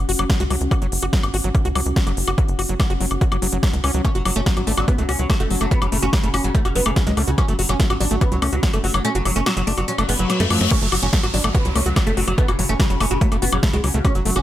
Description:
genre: psychedelic trance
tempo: 144 BPM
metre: 4/4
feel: straight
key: F# minor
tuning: A4 = 438 Hz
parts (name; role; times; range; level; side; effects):
- tight sequencer bass; bass; 0.0-14.4 s; F#1 to F#2; -22 LUFS; equal; tube saturation
- warbly tape-like pad; texture; 0.0-14.4 s; C#4 to F#5; -30 LUFS; left 2 dB; chorus, built-in reverb, sidechain pumping
- overdriven acid bass; riff; 0.1-14.4 s; E#3 to F#4; -26 LUFS; equal; auto-pan, sidechain pumping, ping-pong delay
- big-room dance drum kit; drums; 0.1-14.4 s; crash cymbal, hi-hat, snare drum, woodblock; -24 LUFS; left 2 dB; overdrive
- electronic kick drum; drums; 0.3-14.1 s; none; -19 LUFS; equal; none
- oud; melody; 4.0-14.4 s; C#3 to D4; -25 LUFS; right 1 dB; phaser, sidechain pumping, ping-pong delay
- reverse cymbal and downlifter; sound effects; 10.1-14.0 s; none; -28 LUFS; left 2 dB; none
room: little or no reverb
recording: none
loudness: -17 LUFS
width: side -13 dB against mid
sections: 0.0-10.7 A section; 10.7-14.4 B section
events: kick drops out 9.0-10.7; reverse cymbal 10.1-10.7; drum fill 10.3-10.7; drop 10.7-14.4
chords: 0.0 F#5

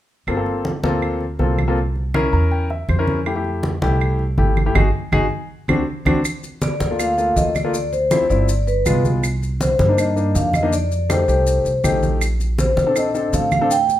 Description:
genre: Afro-Cuban jazz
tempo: 161 BPM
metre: 4/4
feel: straight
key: G dorian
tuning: A4 = 440 Hz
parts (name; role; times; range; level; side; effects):
- warm grand piano; accompaniment; 0.3-13.7 s; F3 to Bb5; -22 LUFS; left 2 dB; none
- upright bass; bass; 0.3-14.0 s; G1 to Bb2; -20 LUFS; right 1 dB; none
- claves; percussion; 0.3-13.7 s; none; -27 LUFS; right 6 dB; none
- congas; percussion; 0.3-14.0 s; none; -24 LUFS; equal; none
- maracas; percussion; 6.2-14.0 s; none; -32 LUFS; left 6 dB; none
- vibraphone with medium mallets; melody; 6.6-14.0 s; B4 to G5; -19 LUFS; left 1 dB; none
room: light reverb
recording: minimal, uncompressed stereo recording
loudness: -16 LUFS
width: side -13 dB against mid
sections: 0.3-6.2 A section; 6.2-14.0 B section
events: grand piano fill 2.1-3.3, 5.7-6.2; band accent 4.8-6.2; drum fill 5.7-6.2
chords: 0.3 Gm11; 1.8 C7b9; 3.3 Fmaj9; 4.8 Ab5; 5.5 D7; 6.2 Dm; 7.7 Dm9; 8.5 G7b9; 9.2 Cm9; 10.7 F9; 12.2 Bbmaj9

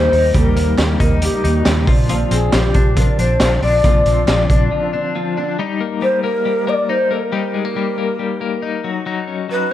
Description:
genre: jangly indie pop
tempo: 138 BPM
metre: 4/4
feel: straight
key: Eb major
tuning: A4 = 441 Hz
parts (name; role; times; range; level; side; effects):
- breathy mellow long shakuhachi; melody; 0.0-9.7 s; G4 to Eb5; -19 LUFS; left 1 dB; analog delay
- fingerpicked acoustic archtop guitar; accompaniment; 0.0-5.6 s; Bb2 to Eb4; -24 LUFS; right 5 dB; none
- twelve-string electric guitar; arpeggios; 0.0-9.7 s; F3 to Eb4; -21 LUFS; left 7 dB; tremolo
- vintage muted fingered electric bass; bass; 0.0-4.7 s; Bb1 to Eb2; -18 LUFS; equal; none
- raw garage drum kit; drums; 0.1-4.6 s; hi-hat, kick drum, snare drum; -17 LUFS; equal; none
- group handclap; percussion; 0.8-4.4 s; none; -32 LUFS; right 4 dB; none
room: moderate large studio reverb, RT60 1.2 s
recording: dark, warm production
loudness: -14 LUFS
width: side -12 dB against mid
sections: 0.0-5.6 A section; 5.6-9.7 B section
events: break 4.7-5.6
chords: 0.0 Eb; 1.9 Bbadd9; 5.6 Eb; 8.8 Badd9/F#

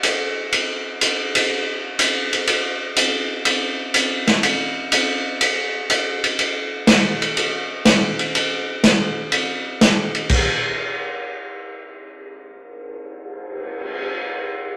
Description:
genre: country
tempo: 123 BPM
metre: 4/4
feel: swing 69% on 8ths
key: none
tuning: none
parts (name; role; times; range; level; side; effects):
- swinging big-band drum kit; drums; 0.0-14.1 s; crash cymbal, cymbal swell, hi-hat, kick drum, ride cymbal, snare drum; -20 LUFS; equal; none
room: wet studio reverb, RT60 0.8 s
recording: none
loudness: -20 LUFS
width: mono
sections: 0.0-6.4 A section; 6.4-10.3 B section; 10.3-14.2 C section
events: none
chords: none

